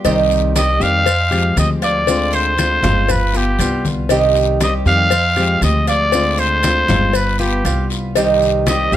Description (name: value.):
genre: latin, Cuban son and guajira.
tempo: 118 BPM.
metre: 4/4.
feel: straight.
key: C harmonic minor.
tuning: A4 = 440 Hz.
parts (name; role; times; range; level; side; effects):
flamenco guitar; accompaniment; 0.0-9.0 s; C3 to G4; -20 LUFS; left 3 dB; none.
Cuban tres; arpeggios; 0.0-9.0 s; Eb4 to F5; -21 LUFS; right 7 dB; tape echo.
upright bass; bass; 0.0-9.0 s; G1 to F2; -19 LUFS; equal; none.
cowbell; percussion; 0.0-8.9 s; none; -22 LUFS; left 13 dB; none.
congas; percussion; 0.1-8.9 s; none; -23 LUFS; left 2 dB; none.
guiro; percussion; 0.1-9.0 s; none; -30 LUFS; left 8 dB; none.
maracas; percussion; 0.1-9.0 s; none; -29 LUFS; right 6 dB; none.
growling trumpet; melody; 0.6-9.0 s; G4 to F5; -17 LUFS; equal; none.
room: light reverb.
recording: close, detailed microphones.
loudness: -13 LUFS.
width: side -12 dB against mid.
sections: 0.0-9.0 A section.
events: none.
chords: 0.0 Cm; 1.1 Fmadd9; 2.1 Dm7b5; 3.1 G7; 4.1 Cm; 5.1 Fmadd9; 6.1 Dm7b5; 7.1 G7; 8.2 Cm.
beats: | 0.04 0.55 1.06 1.57 | 2.08 2.58 3.09 3.60 | 4.11 4.61 5.12 5.63 | 6.13 6.64 7.15 7.65 | 8.16 8.67.